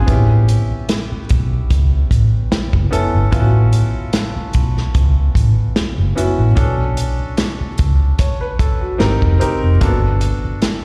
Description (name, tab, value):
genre	lush 1970s-style soul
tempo	74 BPM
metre	4/4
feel	swing 54% on 16ths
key	unclear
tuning	A4 = 439 Hz
part	warm concert grand piano	accompaniment	0.0-10.8 s	A#3 to C#5	-25 LUFS	equal	slapback echo
part	vintage muted fingered electric bass	bass	0.0-10.5 s	E#1 to C#2	-16 LUFS	equal	none
part	warm soul drum kit	drums	0.1-10.8 s	hi-hat, kick drum, snare drum	-20 LUFS	equal	none
room	little or no reverb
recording	live gig heard through the venue's PA, recital hall reverb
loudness	-16 LUFS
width	mono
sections	0.0-10.8 A section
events	none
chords	0.1 A7; 6.6 Bm7; 9.0 G#maj7; 9.8 Gmaj7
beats	| 0.08 0.89 1.70 2.52 | 3.33 4.14 4.95 5.76 | 6.57 7.38 8.20 9.01 | 9.82 10.63